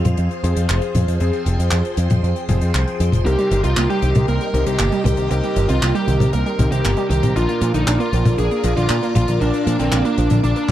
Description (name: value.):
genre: italo disco.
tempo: 117 BPM.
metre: 4/4.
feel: straight.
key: unclear.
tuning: A4 = 440 Hz.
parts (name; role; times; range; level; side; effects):
phased string machine; sustained chords; 0.0-10.7 s; Ab4 to D6; -27 LUFS; equal; ensemble chorus, phaser.
bright electric grand piano; stabs; 0.0-10.7 s; Bb2 to C5; -27 LUFS; left 3 dB; low-pass filter.
damped 70s drum kit; drums; 0.0-10.7 s; handclaps, hi-hat, toms; -21 LUFS; left 1 dB; small room ambience.
picked electric bass with an envelope filter; bass; 0.1-10.7 s; F1 to Bb2; -19 LUFS; equal; none.
bluesy overdriven lead guitar; melody; 3.3-10.7 s; C4 to Bb4; -22 LUFS; equal; distortion.
wide unison pluck; arpeggios; 3.3-10.7 s; C3 to D4; -24 LUFS; right 3 dB; tape echo.
room: small room ambience.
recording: dry, close 1970s-style studio recording.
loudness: -16 LUFS.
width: side -12 dB against mid.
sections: 0.0-10.7 A section.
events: none.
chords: 0.0 Fm; 3.3 Cm7; 7.4 Bb.